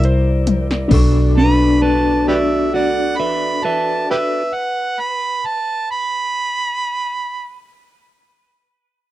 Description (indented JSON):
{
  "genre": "slow blues",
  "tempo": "44 BPM (dotted quarters)",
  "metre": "12/8",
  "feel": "straight",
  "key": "B minor",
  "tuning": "A4 = 440 Hz",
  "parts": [
    { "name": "clear harmonica", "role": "melody", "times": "0.0-7.6 s", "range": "G4 to B5", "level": "-20 LUFS", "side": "right 2 dB", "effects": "overdrive" },
    { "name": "clean lap steel guitar", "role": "second line", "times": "0.0-7.1 s", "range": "D4 to E5", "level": "-20 LUFS", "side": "right 2 dB", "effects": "tape echo" },
    { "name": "dark upright piano", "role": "accompaniment", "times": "0.0-4.4 s", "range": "D4 to C#6", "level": "-26 LUFS", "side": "right 1 dB", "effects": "none" },
    { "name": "mellow tonewheel organ", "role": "sustained chords", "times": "0.0-4.4 s", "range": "G3 to D5", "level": "-25 LUFS", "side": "left 2 dB", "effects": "slow rotary speaker" },
    { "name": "vintage muted fingered electric bass", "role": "bass", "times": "0.0-4.4 s", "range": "B1 to C2", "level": "-17 LUFS", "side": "equal", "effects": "none" },
    { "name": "punchy analog drum machine", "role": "drums", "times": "0.0-1.1 s", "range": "crash cymbal, hi-hat, kick drum, snare drum, toms", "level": "-17 LUFS", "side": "left 1 dB", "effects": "none" },
    { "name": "electric guitar through a small old amp", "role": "accompaniment", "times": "0.9-4.5 s", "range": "B3 to A4", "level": "-22 LUFS", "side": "left 5 dB", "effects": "tremolo" }
  ],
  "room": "digital ambience",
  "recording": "dry, close 1970s-style studio recording",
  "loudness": "-15 LUFS",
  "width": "side -14 dB against mid",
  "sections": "0.9-6.3 A section",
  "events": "drum fill 0.5-0.9",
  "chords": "0.0 C7; 0.9 Bm9"
}